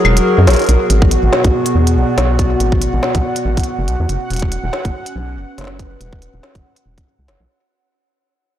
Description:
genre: IDM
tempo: 141 BPM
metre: 4/4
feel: swing 56% on 16ths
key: B dorian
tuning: A4 = 440 Hz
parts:
  - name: warbly tape-like pad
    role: sustained chords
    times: 0.0-7.5 s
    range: B2 to F#5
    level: -18 LUFS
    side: equal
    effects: chorus, built-in reverb
  - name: rubbery square bass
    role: bass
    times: 0.0-7.5 s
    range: E1 to F#2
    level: -15 LUFS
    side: equal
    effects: tube saturation
  - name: organic electronic drum kit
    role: drums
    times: 0.0-7.4 s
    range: claves, hi-hat, snare drum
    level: -21 LUFS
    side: left 1 dB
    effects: overdrive, tape echo
  - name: bubbling stepped-filter texture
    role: texture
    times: 0.7-7.5 s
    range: F#5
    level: -27 LUFS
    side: right 6 dB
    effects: chorus, built-in reverb, sidechain pumping
  - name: electronic kick drum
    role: drums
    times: 1.0-7.1 s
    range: none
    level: -17 LUFS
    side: equal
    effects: overdrive
room: light reverb, digital ambience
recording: blown-out, overdriven recording, overdrive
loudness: -12 LUFS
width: side -11 dB against mid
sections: 0.7-7.5 A section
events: kick drops out 0.3-0.7; fade-out 0.7-7.5; filter sweep on ambient pad 0.7-7.5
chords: 0.0 F#add9; 0.7 Bm; 4.1 F#sus4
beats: 0.26 | 0.69 1.11 1.54 1.96 | 2.39 2.81 3.24 3.67 | 4.09 4.52 4.94 5.37 | 5.79 6.22 6.64 7.07

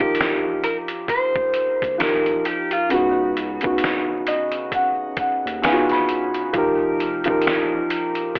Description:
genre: lo-fi hip hop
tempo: 66 BPM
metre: 4/4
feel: swing 59% on 16ths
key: unclear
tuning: A4 = 436 Hz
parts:
  - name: electric guitar through a small old amp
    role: melody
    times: 0.0-3.8 s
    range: F4 to C5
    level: -25 LUFS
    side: equal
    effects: low-pass filter, analog delay
  - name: dark upright piano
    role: accompaniment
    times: 0.0-8.4 s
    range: Db3 to Cb6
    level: -23 LUFS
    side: equal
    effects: cassette tape, low-pass filter
  - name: lo-fi sampler-style drum kit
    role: drums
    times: 0.0-8.4 s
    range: finger snaps, hi-hat, kick drum, snare drum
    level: -28 LUFS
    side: equal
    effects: none
  - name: saturated sub bass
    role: bass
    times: 1.8-7.2 s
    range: F1 to Eb2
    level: -37 LUFS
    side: equal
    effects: none
room: moderate small room reverb, RT60 0.5 s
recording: vinyl crackle, telephone sound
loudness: -21 LUFS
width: mono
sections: 0.0-8.4 A section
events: upright piano fill 3.8-6.5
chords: 0.0 F9sus4; 2.9 Db9sus4; 6.5 F9sus4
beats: 0.18 1.09 2.00 | 2.90 3.81 4.72 5.63 | 6.54 7.45 8.36

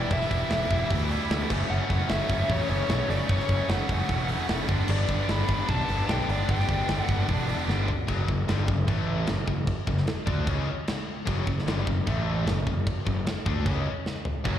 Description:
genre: heavy metal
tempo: 151 BPM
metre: 4/4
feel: straight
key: F# phrygian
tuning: A4 = 441 Hz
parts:
  - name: high-gain lead guitar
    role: melody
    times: 0.0-7.3 s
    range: C#5 to B5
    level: -32 LUFS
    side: left 2 dB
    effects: distortion, slapback echo, tape echo
  - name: heavy high-gain guitar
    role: riff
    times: 0.0-14.6 s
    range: F#2 to D4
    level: -34 LUFS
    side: left 10 dB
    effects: distortion, slapback echo
  - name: heavy high-gain guitar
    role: riff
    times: 0.0-7.9, 14.4-14.6 s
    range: F#2 to E4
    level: -33 LUFS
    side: right 13 dB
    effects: distortion, slapback echo
  - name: overdriven electric guitar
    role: riff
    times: 0.0-14.6 s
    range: F#2 to E4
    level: -35 LUFS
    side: equal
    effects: slapback echo
  - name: fuzz picked electric bass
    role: bass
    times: 0.0-14.6 s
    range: E1 to D2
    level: -27 LUFS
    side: equal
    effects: overdrive
  - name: tight metal drum kit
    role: drums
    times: 0.1-14.5 s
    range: crash cymbal, hi-hat, kick drum, snare drum, toms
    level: -30 LUFS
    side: equal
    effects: none
room: little or no reverb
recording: live gig heard through the venue's PA, recital hall reverb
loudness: -24 LUFS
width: side -10 dB against mid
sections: 0.0-8.1 A section; 8.1-14.6 B section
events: drum fill 7.7-8.1, 14.1-14.5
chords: 0.0 Em; 1.5 F#m; 4.7 G; 8.1 F#5; 8.9 A5; 9.3 F#m; 12.1 A5; 12.5 F#m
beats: | 0.11 0.51 0.90 1.30 | 1.70 2.10 2.50 2.89 | 3.29 3.69 4.09 4.49 | 4.89 5.29 5.68 6.08 | 6.48 6.88 7.28 7.68 | 8.08 8.48 8.88 9.28 | 9.67 10.07 10.47 10.87 | 11.27 11.67 12.06 12.46 | 12.86 13.26 13.66 14.05 | 14.45

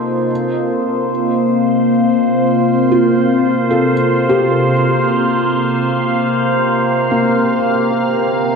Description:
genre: ambient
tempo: 57 BPM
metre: 4/4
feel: straight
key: unclear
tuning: A4 = 439 Hz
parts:
  - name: evolving wavetable pad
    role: sustained chords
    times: 0.0-8.6 s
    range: C3 to F5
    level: -13 LUFS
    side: equal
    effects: phaser, built-in reverb
  - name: felt-muted upright piano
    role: arpeggios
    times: 0.0-8.6 s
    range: Bb3 to A4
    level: -19 LUFS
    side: equal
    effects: ping-pong delay
room: wet cathedral reverb, RT60 6.7 s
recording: in a vast, echoing space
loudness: -12 LUFS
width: side -5 dB against mid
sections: 0.0-8.6 A section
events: none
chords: 0.0 Fsus4/C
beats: 0.77 1.83 | 2.88 3.93 4.99 6.04 | 7.09 8.14

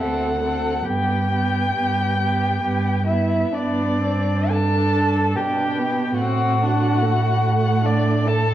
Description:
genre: classical, slow romantic movement for string quartet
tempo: 59-74 BPM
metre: 3/4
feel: rubato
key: G major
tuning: A4 = 440 Hz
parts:
  - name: muted violin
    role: melody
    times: 0.0-8.5 s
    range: D5 to A5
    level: -24 LUFS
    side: left 3 dB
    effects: none
  - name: muted violin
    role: second line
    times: 0.0-8.5 s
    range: D4 to A4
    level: -25 LUFS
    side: equal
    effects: none
  - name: muted viola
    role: accompaniment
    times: 0.0-8.5 s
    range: A3 to D4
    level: -25 LUFS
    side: right 2 dB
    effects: none
  - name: muted cello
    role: bass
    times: 0.0-8.5 s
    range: D2 to B2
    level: -22 LUFS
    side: right 2 dB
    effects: none
room: wet recital hall reverb, RT60 1.6 s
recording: worn, warbling old tape, cassette tape, warbly pitch drift, small room ambience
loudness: -18 LUFS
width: side -12 dB against mid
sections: 0.0-3.5 A section; 3.5-8.5 B section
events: none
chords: 0.0 D7; 0.9 G; 6.2 D7/A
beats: 0.00 | 0.86 1.77 2.63 | 3.53 4.50 5.37 | 6.21 7.04 7.87

